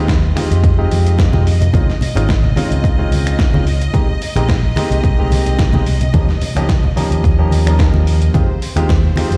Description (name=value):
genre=nu-disco, nu disco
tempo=109 BPM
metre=4/4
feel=swing 53% on 16ths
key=F minor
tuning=A4 = 441 Hz
part: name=warm grand piano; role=accompaniment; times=0.0-9.4 s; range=F3 to Bb4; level=-24 LUFS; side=equal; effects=sidechain pumping, digital delay
part: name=clear studio string section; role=sustained chords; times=0.0-9.4 s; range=C5 to Eb5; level=-31 LUFS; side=equal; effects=sidechain pumping
part: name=fingered electric bass with an envelope filter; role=bass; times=0.0-9.4 s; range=Ab1 to F2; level=-17 LUFS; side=equal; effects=none
part: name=dusty soul sampler-style drum kit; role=drums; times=0.1-9.4 s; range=finger snaps, hi-hat, snare drum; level=-28 LUFS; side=equal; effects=overdrive, small room ambience
part: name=electronic kick drum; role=drums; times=0.1-9.0 s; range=none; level=-17 LUFS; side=equal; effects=overdrive, small room ambience
part: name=congas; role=percussion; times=0.4-9.3 s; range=none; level=-23 LUFS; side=equal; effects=none
room=digital ambience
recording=played on a big sound system in a bare room, large studio reverb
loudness=-14 LUFS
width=mono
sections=0.0-9.4 A section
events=none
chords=0.0 Fm7; 1.7 Dbmaj7; 3.9 Abmaj7; 6.1 Eb7; 8.3 Fm7